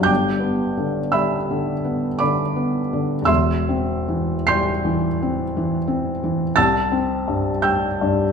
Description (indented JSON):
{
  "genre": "classical, romantic nocturne for solo piano",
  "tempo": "49-60 BPM (dotted quarters)",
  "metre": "9/8",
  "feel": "rubato",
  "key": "unclear",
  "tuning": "A4 = 441 Hz",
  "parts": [
    { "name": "felt-muted upright piano", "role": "solo", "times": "0.0-8.3 s", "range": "E1 to C7", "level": "-18 LUFS", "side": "equal", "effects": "none" }
  ],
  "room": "moderate recital hall reverb, RT60 1.5 s",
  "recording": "none",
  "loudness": "-18 LUFS",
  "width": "side -6 dB against mid",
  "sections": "0.0-8.3 A section",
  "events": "none",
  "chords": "0.1 G; 3.3 C/E; 6.6 C"
}